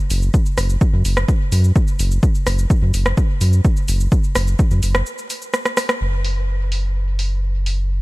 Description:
dub techno; 127 BPM; 4/4; straight; A4 = 440 Hz
round analog bass; bass; 0.1-8.0 s; F#1 to F#2; -17 LUFS; equal; sidechain pumping
deep house drum kit; drums; 0.1-7.8 s; hi-hat, rim click, shaker; -24 LUFS; equal; overdrive, low-pass filter on perc, low-pass filter on hats, low-pass filter on snare
electronic kick drum; drums; 0.3-4.7 s; -16 LUFS; equal; overdrive
digital ambience; vinyl crackle; -15 LUFS; side -21 dB against mid
0.0-6.0 A section; 6.0-8.0 B section
break 5.1-6.0; drum fill 5.5-6.0

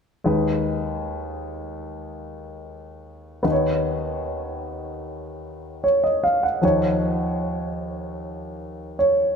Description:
pop; 76 BPM; 4/4; straight; A4 = 441 Hz
warm baby grand piano; accompaniment; 0.2-9.4 s; Eb2 to F#5; -22 LUFS; equal
moderate plate reverb, RT60 3.1 s; -21 LUFS; side -6 dB against mid
0.3-9.4 A section
0.3 Abm/Eb; 3.4 Badd9/D#; 6.6 Dbadd9/Eb

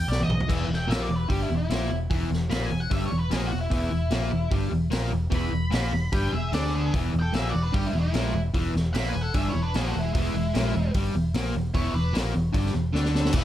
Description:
blues rock power trio and southern rock; 150 BPM; 4/4; straight; A4 = 440 Hz
octave-fuzz lead guitar; melody; 0.0-12.1 s; E4 to B5; -33 LUFS; left 1 dB; distortion, plate reverb
vintage muted fingered electric bass; bass; 0.0-13.4 s; E1 to D2; -28 LUFS; equal
raw garage drum kit; drums; 0.1-13.4 s; crash cymbal, hi-hat, kick drum, snare drum, toms; -29 LUFS; equal
distorted electric guitar; riff; 0.5-13.4 s; E2 to D4; -28 LUFS; equal; distortion
nasal lead guitar with a parked wah; second line; 6.1-12.1 s; G#3 to E5; -35 LUFS; right 3 dB; overdrive
light reverb; -23 LUFS; side -12 dB against mid
0.5-13.3 A section
drum fill 0.1-0.5, 12.9-13.3
0.5 E

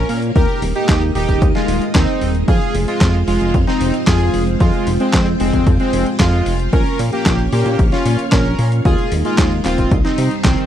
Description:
italo disco; 113 BPM; 4/4; straight; F minor; A4 = 440 Hz
analog synth brass; melody; 0.0-10.7 s; Eb3 to Bb4; -19 LUFS; equal; chorus, tape echo
string machine, full ensemble; sustained chords; 0.0-10.7 s; G3 to G5; -23 LUFS; right 1 dB; ensemble chorus
chorused synth bass; bass; 0.0-10.6 s; Eb1 to C3; -18 LUFS; equal; tube saturation
dusty soul sampler-style drum kit; drums; 0.1-10.7 s; handclaps, hi-hat, snare drum; -21 LUFS; equal; small room ambience
electronic kick drum; drums; 0.4-10.6 s; -17 LUFS; equal; small room ambience
little or no reverb; dry, close 1970s-style studio recording; -13 LUFS; side -10 dB against mid
0.0-10.7 A section
0.4 Ebsus4; 2.5 Fm; 6.7 Bbm; 8.9 Ebsus4; 9.9 Cm

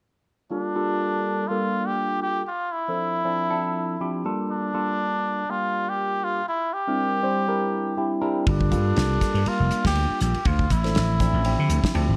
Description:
electric jazz fusion; 121 BPM; 4/4; swing 55% on 16ths; G dorian; A4 = 443 Hz
trumpet with cup mute; melody; 0.5-12.2 s; D4 to G4; -29 LUFS; equal
barky tine electric piano; accompaniment; 0.5-12.2 s; F3 to C5; -29 LUFS; equal; phaser
vintage slap bass; bass; 8.5-12.2 s; F1 to D3; -25 LUFS; equal
damped 70s drum kit; drums; 8.5-12.1 s; hi-hat, kick drum, ride cymbal, snare drum; -28 LUFS; equal
light reverb, small room ambience; dark, warm production; -24 LUFS; mono
0.5-12.2 A section
0.5 Gm7; 2.5 Dm9; 4.2 Gm7; 6.5 C9; 8.5 Gm7; 10.5 Dm9

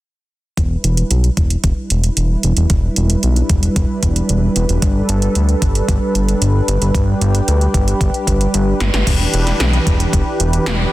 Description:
synthwave; 113 BPM; 4/4; straight; E minor; A4 = 437 Hz
brassy analog pad; sustained chords; 0.6-10.9 s; E3 to B4; -20 LUFS; right 1 dB; chorus, sidechain pumping
fat analog bass; bass; 0.6-10.9 s; E1 to D2; -15 LUFS; equal; sidechain pumping
80s electronic pad drums; drums; 0.6-10.8 s; crash cymbal, hi-hat, snare drum; -21 LUFS; right 1 dB
electronic kick drum; drums; 0.6-10.2 s; -17 LUFS; equal
light reverb; dense, heavily limited modern master; -13 LUFS; side -16 dB against mid
0.6-9.1 A section; 9.1-10.9 B section
filter sweep on analog synth bass 0.6-9.1; filter sweep on analog synth pad 0.6-9.1; drum fill 8.8
0.6 Em7; 4.8 Gadd9; 9.1 Em7

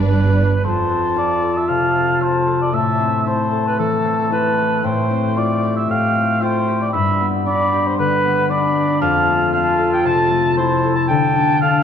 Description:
cinematic, heroic adventure film score; 115 BPM; 4/4; straight; F lydian; A4 = 439 Hz
mellow cor anglais; second line; 0.1-11.8 s; A4 to A5; -20 LUFS; right 3 dB
mellow concert flute; second line; 0.6-11.8 s; G5 to B5; -22 LUFS; left 3 dB
warm clarinet; second line; 0.6-11.8 s; G3 to F4; -22 LUFS; equal
concert harp; arpeggios; 0.6-11.8 s; F2 to A4; -21 LUFS; left 6 dB
wet scoring stage reverb, RT60 1.9 s; worn, warbling old tape, cassette tape, warbly pitch drift, lossy compression artefacts; -15 LUFS; side -8 dB against mid
0.6-11.8 A section
0.0 G; 0.6 F; 2.7 Am; 4.8 Fadd9/A; 6.9 G; 9.0 F; 11.1 Dm

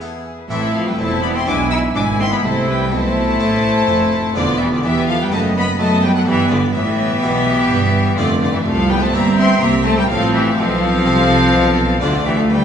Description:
classical, baroque-style concerto movement with solo episodes; 125 BPM; 4/4; straight; A minor; A4 = 440 Hz
rich cello; melody; 0.0-12.6 s; D3 to E4; -20 LUFS; left 2 dB
warm chamber violin section; melody; 0.0-12.6 s; B4 to E6; -22 LUFS; left 3 dB
warm chamber violin section; second line; 0.0-12.6 s; F4 to G#5; -24 LUFS; left 2 dB
harpsichord; accompaniment; 0.0-12.6 s; C2 to F4; -27 LUFS; equal
rich studio viola section; accompaniment; 0.0-12.6 s; A3 to G#4; -21 LUFS; right 1 dB
rich chamber cello section; bass; 0.0-12.6 s; C2 to F#3; -22 LUFS; right 3 dB
warm studio double bass section; bass; 0.5-12.6 s; E1 to F#2; -22 LUFS; right 3 dB
wet recital hall reverb, RT60 1.6 s; recorded in a church or concert hall, nothing above 10.3 kHz; -13 LUFS; side -8 dB against mid
0.5-12.6 A section
0.0 E; 0.5 Am; 1.5 E/B; 2.4 Am; 4.4 E5; 5.3 B/F#; 6.3 Em/G; 8.2 F; 9.1 C/G; 10.1 F/A; 12.0 Dm

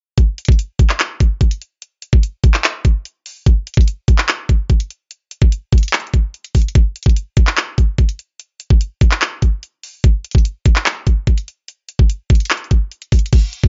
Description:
hip hop; 146 BPM; 4/4; half-time
trap drum kit; drums; 0.2-13.7 s; crash cymbal, handclaps, hi-hat, kick drum; -15 LUFS; equal
little or no reverb; dry, gritty hardware recording, nothing above 7.5 kHz; -16 LUFS; mono
0.2-13.3 A section

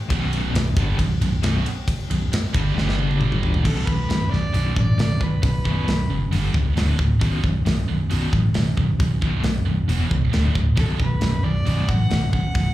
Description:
hard rock; 135 BPM; 4/4; straight; B minor; A4 = 440 Hz
crunchy overdriven guitar; riff; 0.1-12.7 s; B1 to G3; -28 LUFS; left 5 dB; tremolo
scooped high-gain guitar; riff; 0.1-12.7 s; B1 to G3; -25 LUFS; right 4 dB; distortion, slapback echo
hollow-body short-scale fingered electric bass; bass; 0.1-12.7 s; B0 to A1; -22 LUFS; equal
tight metal drum kit; drums; 0.1-12.7 s; crash cymbal, hi-hat, kick drum, ride cymbal, snare drum, toms; -24 LUFS; equal
rich fiddle; melody; 3.6-6.1, 10.8-12.7 s; A4 to F#5; -30 LUFS; equal; slapback echo
studio reverb; live gig heard through the venue's PA, club reverb; -18 LUFS; side -15 dB against mid
0.0-3.6 A section; 3.6-12.7 B section
drum fill 2.8-3.6
0.1 Bm; 2.8 G5; 3.6 Bm; 6.3 G5; 6.8 D5; 7.2 B5; 9.9 E5; 10.3 D5; 10.8 Bm

